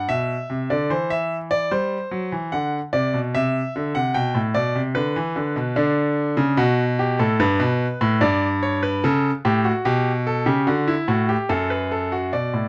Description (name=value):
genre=classical, baroque-style two-part invention for grand piano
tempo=74 BPM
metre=4/4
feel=straight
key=G major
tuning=A4 = 441 Hz
part: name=bright concert grand piano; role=solo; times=0.0-12.7 s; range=F#2 to G5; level=-22 LUFS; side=equal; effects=none
room=little or no reverb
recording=close, detailed microphones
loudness=-22 LUFS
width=mono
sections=0.0-12.3 A section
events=none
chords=0.0 G (rootless); 0.9 C/E; 2.5 D7; 4.1 G; 5.8 D; 7.4 G; 9.0 A7; 10.7 D